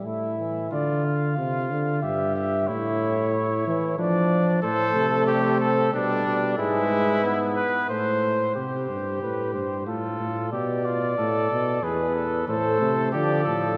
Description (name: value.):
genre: classical, imitative canzona for brass ensemble.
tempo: 92 BPM.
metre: 3/4.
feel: straight.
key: D minor.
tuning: A4 = 439 Hz.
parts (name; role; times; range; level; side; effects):
dark trumpet; melody; 0.0-13.8 s; F4 to F5; -30 LUFS; equal; none.
mellow trumpet; second line; 0.0-13.8 s; D4 to C5; -30 LUFS; equal; none.
clear trombone; accompaniment; 0.0-0.7, 4.6-8.6, 12.5-13.8 s; E3 to B3; -30 LUFS; equal; none.
mellow bass trombone; bass; 0.0-13.8 s; E2 to F3; -29 LUFS; equal; none.
room: wet church reverb, RT60 3.5 s.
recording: none.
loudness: -24 LUFS.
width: mono.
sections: 0.7-8.6 A section; 8.6-13.8 B section.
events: none.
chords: 0.0 A5; 0.7 Dm; 2.0 Em/G; 2.7 A; 4.0 Dm/F; 4.6 Am; 5.9 G/B; 6.6 E/G#; 7.9 Am; 8.6 C5; 9.9 F/A; 10.5 Bdim; 11.8 E; 12.5 Am; 13.1 Dm.